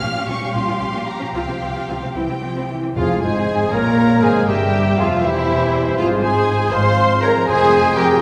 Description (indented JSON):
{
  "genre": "classical, dramatic, fast romantic movement for symphony orchestra",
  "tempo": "73-83 BPM (dotted quarters)",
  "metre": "6/8",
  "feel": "rubato",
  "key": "F minor",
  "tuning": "A4 = 440 Hz",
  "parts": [
    { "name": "dark symphonic violin section", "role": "melody", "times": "0.0-8.2 s", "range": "E5 to F6", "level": "-26 LUFS", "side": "equal", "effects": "none" },
    { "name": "warm symphonic violin section", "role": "second line", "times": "0.0-8.0 s", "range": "E4 to G5", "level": "-28 LUFS", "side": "equal", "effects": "none" },
    { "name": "warm symphonic viola section", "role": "accompaniment", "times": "0.0-8.1 s", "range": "C4 to C5", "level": "-29 LUFS", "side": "equal", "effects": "none" },
    { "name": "concert harp", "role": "arpeggios", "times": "0.0-8.2 s", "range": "F2 to G5", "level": "-30 LUFS", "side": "equal", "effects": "none" },
    { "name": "warm chamber double bass section", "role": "bass", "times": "0.0-8.1 s", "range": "E1 to C2", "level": "-28 LUFS", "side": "equal", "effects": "none" },
    { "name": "warm symphonic cello section", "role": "bass", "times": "0.0-8.1 s", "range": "E2 to F3", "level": "-28 LUFS", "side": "equal", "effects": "none" },
    { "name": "bright concert flute", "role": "second line", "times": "3.0-8.2 s", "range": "G4 to F5", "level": "-26 LUFS", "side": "equal", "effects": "none" },
    { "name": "warm clarinet", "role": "second line", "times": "3.0-8.2 s", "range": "E4 to C5", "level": "-29 LUFS", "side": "equal", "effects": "none" },
    { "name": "clear trombone section", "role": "sustained chords", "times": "3.0-8.2 s", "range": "E3 to Bb3", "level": "-28 LUFS", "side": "equal", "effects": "none" },
    { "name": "dark French horn section", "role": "sustained chords", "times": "3.0-8.2 s", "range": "E3 to Ab4", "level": "-24 LUFS", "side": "equal", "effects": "none" },
    { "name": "dark trumpet", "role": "stabs", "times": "3.0-8.2 s", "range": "E4 to C5", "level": "-26 LUFS", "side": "equal", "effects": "none" },
    { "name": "timpani", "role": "percussion", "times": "3.0-3.7 s", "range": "F2", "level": "-32 LUFS", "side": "equal", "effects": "none" },
    { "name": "warm cor anglais", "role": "second line", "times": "3.7-8.2 s", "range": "Ab4 to F5", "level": "-26 LUFS", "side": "equal", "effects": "none" }
  ],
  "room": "wet recital hall reverb, RT60 1.6 s",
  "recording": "recorded in a church or concert hall",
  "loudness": "-18 LUFS",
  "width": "mono",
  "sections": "0.0-3.0 A section; 3.0-8.2 B section",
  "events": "none",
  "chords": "0.0 Gm7b5/Bb; 1.3 Csus4; 2.2 C; 3.0 Fm; 4.5 C7; 6.0 Fm/Ab; 7.5 Fm"
}